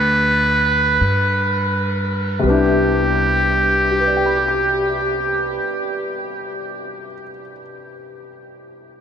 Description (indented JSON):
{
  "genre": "jazz ballad",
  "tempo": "41 BPM",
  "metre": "4/4",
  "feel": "swing 67% on 8ths",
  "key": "C major",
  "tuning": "A4 = 439 Hz",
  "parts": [
    { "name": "trumpet with metal mute", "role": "melody", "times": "0.0-5.6 s", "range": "G4 to B4", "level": "-19 LUFS", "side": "right 1 dB", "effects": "ping-pong delay" },
    { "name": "warm grand piano", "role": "accompaniment", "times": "0.0-9.0 s", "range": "C3 to G6", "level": "-21 LUFS", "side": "left 2 dB", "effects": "wide subtle chorus" },
    { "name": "upright bass", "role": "bass", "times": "0.0-5.6 s", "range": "C2 to G2", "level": "-22 LUFS", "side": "equal", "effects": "none" }
  ],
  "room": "wet huge ambient reverb, RT60 7.5 s",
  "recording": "dreamy mix soaked in reverb",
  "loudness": "-15 LUFS",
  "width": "side -8 dB against mid",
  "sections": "0.0-2.4 A section; 2.4-8.3 B section",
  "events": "slowing down 0.0-2.4",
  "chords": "0.0 G7; 2.4 Cmaj7",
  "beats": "1.02 | 2.44 3.90 5.36 6.82"
}